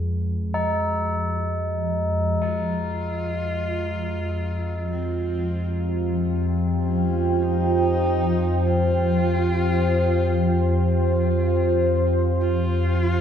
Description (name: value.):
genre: dark ambient drone.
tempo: 48 BPM.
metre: 4/4.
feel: straight.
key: F minor.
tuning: A4 = 441 Hz.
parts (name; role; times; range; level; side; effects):
deep rumbling drone; drone; 0.0-13.2 s; F2 to F3; -23 LUFS; equal; built-in reverb, phaser.
quartz singing bowl; texture; 0.0-2.4 s; Ab3 to Ab4; -39 LUFS; right 3 dB; none.
tubular bells; arpeggios; 0.5-8.0 s; Eb4; -28 LUFS; left 1 dB; tape echo.
clear horsehead fiddle; melody; 2.4-13.2 s; C4 to F4; -34 LUFS; left 1 dB; tape echo.
deep dark ambient pad; sustained chords; 3.7-13.2 s; F4 to Ab5; -24 LUFS; right 1 dB; chorus, built-in reverb.
room: moderate plate reverb, RT60 2.9 s.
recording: dreamy mix soaked in reverb.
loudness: -20 LUFS.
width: side -8 dB against mid.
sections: 0.0-2.4 A section; 2.4-13.2 B section.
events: fade-in on horsehead fiddle 2.4-13.2.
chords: 0.0 Fm; 2.4 F5.